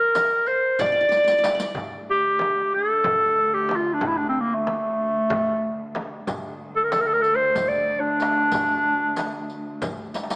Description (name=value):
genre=Turkish makam ensemble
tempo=186 BPM (eighths)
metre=7/8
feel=straight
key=unclear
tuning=A4 = 440 Hz
part: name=breathy clarinet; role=melody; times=0.0-9.9 s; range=A3 to D5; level=-20 LUFS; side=equal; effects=none
part: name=qanun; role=second line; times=0.0-2.6 s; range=Bb4 to D5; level=-33 LUFS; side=equal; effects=none
part: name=riq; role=percussion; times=0.1-1.8, 6.3-10.4 s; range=none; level=-36 LUFS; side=equal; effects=none
part: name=darbuka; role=percussion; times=0.2-10.4 s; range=none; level=-33 LUFS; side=equal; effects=none
part: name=frame drum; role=percussion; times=0.2-10.0 s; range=none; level=-34 LUFS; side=equal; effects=none
part: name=warm studio cello section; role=drone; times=1.8-10.4 s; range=D2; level=-35 LUFS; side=equal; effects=none
room=moderate concert hall reverb, RT60 1.9 s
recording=small speaker sound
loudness=-20 LUFS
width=side -33 dB against mid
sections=0.0-1.8 A section; 1.8-10.4 B section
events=drum fill 1.1-1.8, 10.1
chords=none